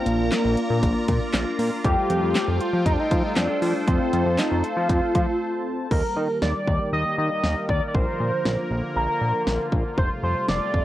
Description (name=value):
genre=synth-pop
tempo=118 BPM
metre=4/4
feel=straight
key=F mixolydian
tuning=A4 = 438 Hz
part: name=octave-doubled lead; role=melody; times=0.0-10.8 s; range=Bb3 to Eb5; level=-25 LUFS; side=equal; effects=chorus, phaser, tape echo
part: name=mellow synth brass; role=accompaniment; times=0.0-5.9 s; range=G3 to F4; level=-29 LUFS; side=left 3 dB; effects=chorus
part: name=sweeping resonant pad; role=sustained chords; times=0.0-10.8 s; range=C3 to Bb5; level=-30 LUFS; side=right 1 dB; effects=chorus
part: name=fat analog bass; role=bass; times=0.1-10.8 s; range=F1 to F3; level=-24 LUFS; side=equal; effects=none
part: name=pop drum kit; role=drums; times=0.1-10.8 s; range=crash cymbal, handclaps, hi-hat, kick drum, snare drum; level=-25 LUFS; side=equal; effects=overdrive
room=light reverb, digital ambience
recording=worn, warbling old tape, cassette tape, warbly pitch drift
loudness=-20 LUFS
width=side -14 dB against mid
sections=0.0-5.9 A section; 5.9-10.8 B section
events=break 5.4-5.9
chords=0.0 Bb; 1.8 Fadd9; 3.9 F; 5.9 Eb; 7.9 Bb; 10.0 Fadd9